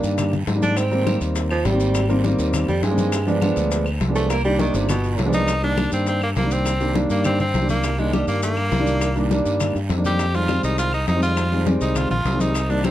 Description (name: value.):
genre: Afro-Cuban jazz.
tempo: 204 BPM.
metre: 4/4.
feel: straight.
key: C minor.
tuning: A4 = 440 Hz.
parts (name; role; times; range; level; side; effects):
warm baritone saxophone; second line; 0.0-5.4 s; B2 to D4; -24 LUFS; right 3 dB; none.
warm grand piano; accompaniment; 0.0-12.9 s; Eb3 to D4; -23 LUFS; equal; none.
fingered electric bass; bass; 0.0-12.9 s; G1 to Ab2; -22 LUFS; equal; none.
congas; percussion; 0.0-12.9 s; none; -27 LUFS; left 2 dB; none.
guiro; percussion; 0.0-12.9 s; none; -38 LUFS; right 5 dB; none.
maracas; percussion; 0.0-12.9 s; none; -37 LUFS; left 4 dB; none.
bongos; percussion; 0.2-12.9 s; none; -34 LUFS; left 8 dB; none.
claves; percussion; 0.2-12.9 s; none; -37 LUFS; left 2 dB; none.
edgy tenor saxophone; melody; 5.3-12.9 s; G3 to G4; -24 LUFS; equal; slapback echo.
room: light reverb.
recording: dark, warm production.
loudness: -18 LUFS.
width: side -13 dB against mid.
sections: 0.0-5.5 A section; 5.5-12.9 B section.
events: baritone saxophone solo 0.0-5.5.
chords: 0.0 Cm7 (rootless); 0.8 Abmaj7; 3.1 G7b9; 4.3 Cm7; 4.9 G7b9; 5.5 Cm7; 10.2 Fm7.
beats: 0.18 0.48 | 0.77 1.06 1.36 1.65 | 1.95 2.24 2.54 2.83 | 3.13 3.42 3.71 4.01 | 4.30 4.60 4.89 5.19 | 5.48 5.78 6.07 6.37 | 6.66 6.96 7.25 7.54 | 7.84 8.13 8.43 8.72 | 9.02 9.31 9.61 9.90 | 10.20 10.49 10.79 11.08 | 11.37 11.67 11.96 12.26 | 12.55 12.85.